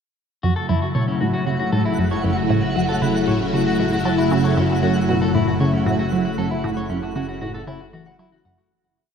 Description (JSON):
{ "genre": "ambient, sequencer-driven space music", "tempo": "116 BPM", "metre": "4/4", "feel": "straight", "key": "F# minor", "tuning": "A4 = 439 Hz", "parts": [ { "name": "phased string machine", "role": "sustained chords", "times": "0.4-8.7 s", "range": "C#3 to E4", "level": "-21 LUFS", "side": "left 1 dB", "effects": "ensemble chorus, phaser" }, { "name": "clean electric guitar", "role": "arpeggios", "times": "0.4-8.7 s", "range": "C#4 to F#5", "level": "-27 LUFS", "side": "left 2 dB", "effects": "auto-pan, ping-pong delay" }, { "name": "resonant blip pluck", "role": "riff", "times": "0.4-8.6 s", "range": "F#2 to F#3", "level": "-22 LUFS", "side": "right 1 dB", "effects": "chorus, phaser, ping-pong delay" }, { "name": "analog drone", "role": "bass", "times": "2.0-8.7 s", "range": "F#1", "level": "-32 LUFS", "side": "equal", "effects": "chorus" }, { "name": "twinkling granular texture", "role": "texture", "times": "1.0-8.7 s", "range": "F#5", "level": "-31 LUFS", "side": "right 1 dB", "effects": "built-in reverb" } ], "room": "wet cathedral reverb, RT60 5.3 s", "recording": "in a vast, echoing space", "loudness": "-18 LUFS", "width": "side -7 dB against mid", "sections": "0.4-8.7 A section", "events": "fade-in on synth drone 0.4-8.7; fade-out 6.0-8.7", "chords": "0.4 F#m7" }